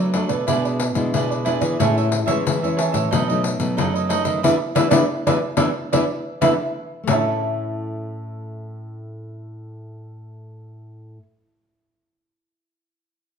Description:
samba and choro; 91 BPM; 4/4; straight; A major; A4 = 441 Hz
cavaquinho; accompaniment; 0.0-11.2 s; D4 to A5; -23 LUFS; right 7 dB
nylon-string guitar; accompaniment; 0.0-11.2 s; F#2 to F#4; -24 LUFS; left 4 dB
nylon-string guitar; bass; 0.0-11.2 s; A2 to F#3; -26 LUFS; right 1 dB
pandeiro; percussion; 0.1-7.2 s; -24 LUFS; left 6 dB
wet large studio reverb, RT60 1.3 s; minimal, uncompressed stereo recording; -18 LUFS; side -7 dB against mid
0.0-7.1 A section; 7.1-9.7 B section
band accent 4.4-7.1
0.5 E7/B; 1.8 Amaj7; 3.1 B7; 4.4 E5; 7.1 A
0.48 1.14 | 1.80 2.46 3.12 3.78 | 4.44 5.10 5.76 6.42 | 7.08 7.74 8.40 9.06

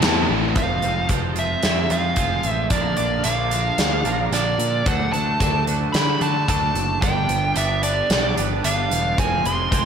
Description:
quiet-loud alternative rock; 111 BPM; 4/4; straight; A4 = 440 Hz
nasal lead guitar with a parked wah; melody; 0.0-9.9 s; D5 to C6; -23 LUFS; equal; overdrive, slapback echo
cranked stack guitar; riff; 0.0-0.6 s; E3 to E4; -27 LUFS; right 9 dB; overdrive, slapback echo
thick fuzz guitar; riff; 0.0-0.6 s; E3 to E4; -26 LUFS; left 11 dB; distortion
fuzz picked electric bass; bass; 0.0-9.9 s; E1 to D3; -25 LUFS; equal; overdrive
big rock drum kit; drums; 0.0-9.8 s; crash cymbal, hi-hat, kick drum, snare drum; -23 LUFS; equal
twelve-string electric guitar; arpeggios; 0.6-9.9 s; F2 to F4; -26 LUFS; right 6 dB; lush chorus, slapback echo
moderate lush hall reverb, RT60 2.2 s; big arena sound; -18 LUFS; side -7 dB against mid
0.6-9.9 A section
half time 0.6-9.9
0.0 Am; 0.6 Fm; 2.7 Bb; 4.9 D; 7.0 G; 9.2 Fm
0.03 | 0.56 1.10 1.64 2.18 | 2.71 3.25 3.79 4.33 | 4.87 5.41 5.95 6.48 | 7.02 7.56 8.10 8.64 | 9.18 9.72

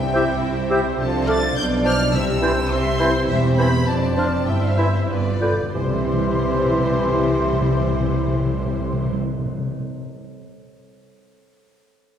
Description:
quick classical-period movement for symphony orchestra; 91-106 BPM; 2/4; straight; C major; A4 = 442 Hz
rich studio violin section; melody; 0.0-9.1 s; C5 to A6; -29 LUFS; left 2 dB
rich studio violin section; second line; 0.0-9.1 s; C4 to E5; -29 LUFS; left 2 dB
clear studio double bass section; bass; 0.0-9.1 s; E1 to C2; -26 LUFS; right 2 dB
rich studio cello section; bass; 0.0-9.1 s; E2 to C3; -26 LUFS; right 1 dB
timpani; percussion; 0.0-3.0, 5.1-9.9 s; G2 to C3; -25 LUFS; left 1 dB
flute section; second line; 0.1-9.1 s; C6 to G6; -31 LUFS; equal
warm cor anglais; second line; 0.1-9.1 s; B4 to E5; -33 LUFS; right 2 dB
mellow bassoon; accompaniment; 0.1-9.1 s; D3 to C4; -27 LUFS; right 2 dB
rich studio viola section; accompaniment; 0.1-9.1 s; E3 to E5; -29 LUFS; equal
mellow French horn section; sustained chords; 0.1-9.1 s; F3 to F4; -27 LUFS; left 2 dB
clear clarinet; second line; 0.2-9.1 s; D4 to G4; -29 LUFS; left 2 dB
wet scoring stage reverb, RT60 2.0 s; heard from further back in the room; -18 LUFS; side -9 dB against mid
0.0-5.7 A section; 5.7-8.4 B section
slowing down 2.7-5.7; timpani fill 5.1-5.7
0.0 C; 1.0 Dm7/C; 1.6 G7/B; 2.1 C; 3.3 C/E; 3.9 Dm7/F; 4.5 C/G; 5.1 G7; 5.7 C
0.42 | 0.99 1.57 | 2.14 2.71 | 3.29 3.88 | 4.47 5.09 | 5.74 6.40 | 7.05 7.71

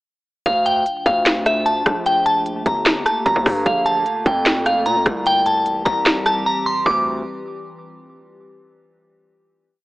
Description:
hip hop, trap; 150 BPM; 4/4; half-time; D minor; A4 = 440 Hz
glassy synth bell; melody; 0.5-7.0 s; E5 to D6; -18 LUFS; equal; chorus, phaser, tape echo
warbly tape-like pad; sustained chords; 0.9-7.0 s; D3 to G4; -29 LUFS; left 1 dB; chorus, built-in reverb, phaser
distorted 808-style bass; bass; 0.5-7.2 s; G1 to Bb2; -25 LUFS; equal; distortion
trap drum kit; drums; 0.5-7.0 s; hi-hat, kick drum, rim click, snare drum, toms; -19 LUFS; equal
moderate recital hall reverb, RT60 1.5 s, digital ambience; AM radio sound; -16 LUFS; side -18 dB against mid
0.5-6.9 hook; 6.9-8.5 final chord
break 6.5-6.9
0.5 Dm; 2.1 Gmadd9; 3.7 Bbmaj7; 5.3 C; 6.9 Dmadd9
| 0.46 0.86 1.26 1.66 | 2.06 2.46 2.86 3.26 | 3.66 4.06 4.46 4.86 | 5.26 5.66 6.06 6.46 | 6.86

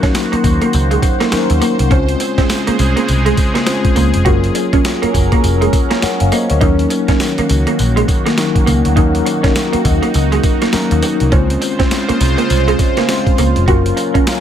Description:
R&B, new jack swing; 102 BPM; 4/4; swing 61% on 16ths; Eb dorian; A4 = 441 Hz
mellow tine electric piano; accompaniment; 0.0-14.4 s; Gb3 to Gb5; -18 LUFS; left 4 dB; medium stereo tremolo
phased analog pad; sustained chords; 0.0-14.4 s; Db3 to C5; -19 LUFS; equal; phaser, chorus
electric guitar through a small old amp; riff; 0.0-14.2 s; Ab3 to Gb4; -19 LUFS; right 4 dB; ensemble chorus
vintage muted picked electric bass; bass; 0.0-14.2 s; F1 to Eb2; -15 LUFS; equal
boom bap sampler-style drum kit; drums; 0.0-14.4 s; hi-hat, kick drum, snare drum, tambourine; -17 LUFS; equal
digital ambience; -11 LUFS; side -9 dB against mid
0.0-14.4 A section
tine electric piano fill 5.7-6.6
0.0 Ebm7; 1.9 Dbmaj7; 4.3 Gbmaj7; 6.6 Ebm7; 11.3 Dbmaj7; 13.7 Gbmaj7
0.14 0.73 1.32 | 1.91 2.50 3.09 3.67 | 4.26 4.85 5.44 6.03 | 6.62 7.20 7.79 8.38 | 8.97 9.56 10.14 10.73 | 11.32 11.91 12.50 13.09 | 13.67 14.26

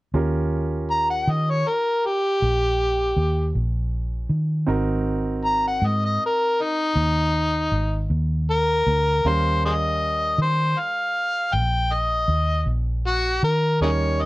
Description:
slow blues; 53 BPM (dotted quarters); 12/8; straight; Eb mixolydian; A4 = 440 Hz
warm concert grand piano; accompaniment; 0.1-14.3 s; G3 to F5; -28 LUFS; right 4 dB
vintage muted fingered electric bass; bass; 0.1-14.3 s; Ab1 to Eb3; -23 LUFS; equal
overdriven harmonica; melody; 0.9-14.3 s; Eb4 to Bb5; -21 LUFS; left 1 dB
moderate club reverb, RT60 0.5 s; -20 LUFS; side -19 dB against mid
0.1-14.3 A section
harmonica solo 0.1-14.3
0.1 Eb7; 4.7 Ab7; 9.2 Eb7
| 0.14 1.28 2.41 3.55 | 4.69 5.83 6.97 8.11 | 9.25 10.39 11.53 12.67 | 13.82

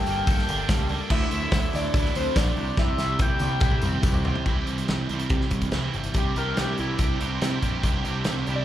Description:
indie rock; 142 BPM; 4/4; straight; A4 = 440 Hz
overdriven synth lead; melody; 0.0-8.6 s; E4 to G5; -30 LUFS; left 1 dB; phaser, slapback echo, tape echo
mellow tine electric piano; second line; 0.0-4.2 s; C4 to G4; -39 LUFS; left 1 dB; medium stereo tremolo
electric guitar through a small old amp; riff; 0.0-8.6 s; G2 to A4; -35 LUFS; left 6 dB; slapback echo
overdriven semi-hollow guitar; riff; 0.0-8.6 s; G2 to A4; -29 LUFS; right 6 dB; ensemble chorus, slapback echo, tape echo
growling picked electric bass; bass; 0.1-8.6 s; G1 to C3; -28 LUFS; equal; overdrive
loose indie drum kit; drums; 0.1-8.6 s; crash cymbal, hi-hat, kick drum, snare drum, toms; -25 LUFS; equal
tambourine; percussion; 0.1-4.3 s; -43 LUFS; left 3 dB
studio reverb; live gig heard through the venue's PA, club reverb; -22 LUFS; side -12 dB against mid
0.0-4.5 A section; 4.5-6.2 B section; 6.2-8.6 C section
drum fill 2.8-4.5; analog synth lead solo 6.2-8.6
0.0 Gmadd9; 1.1 Dadd9; 2.6 C; 6.2 Cadd9
0.27 0.68 | 1.10 1.52 1.94 2.36 | 2.78 3.20 3.62 4.04 | 4.46 4.89 5.31 5.73 | 6.15 6.58 7.00 7.42 | 7.85 8.27

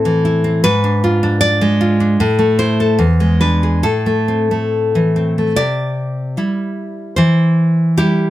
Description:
romantic piece for solo classical guitar; 67-79 BPM; 2/4; rubato; A minor; A4 = 440 Hz
nylon-string guitar; solo; 0.0-8.3 s; E2 to D5; -13 LUFS; equal
light reverb; -13 LUFS; side -14 dB against mid
0.0-5.6 A section; 5.6-8.3 B section
0.0 Am; 0.6 G#dim7; 2.2 Am; 3.0 E7; 3.9 Am; 5.6 C; 7.2 C/E
| 0.65 1.43 | 2.20 3.00 | 3.85 4.74 | 5.59 6.39 | 7.19 8.00

